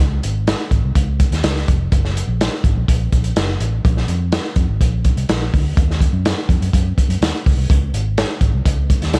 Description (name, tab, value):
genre	uptempo 1960s-style soul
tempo	125 BPM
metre	4/4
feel	straight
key	Db major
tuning	A4 = 440 Hz
part	vintage muted fingered electric bass	bass	0.0-9.2 s	F1 to Gb2	-22 LUFS	equal	none
part	crunchy breakbeat drum kit	drums	0.2-9.2 s	hi-hat, kick drum, snare drum	-19 LUFS	equal	none
room	little or no reverb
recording	none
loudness	-17 LUFS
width	mono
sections	0.0-9.2 A section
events	none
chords	none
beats	| 0.00 0.48 0.96 1.44 | 1.92 2.40 2.88 3.36 | 3.84 4.32 4.80 5.29 | 5.77 6.25 6.73 7.21 | 7.69 8.18 8.66 9.14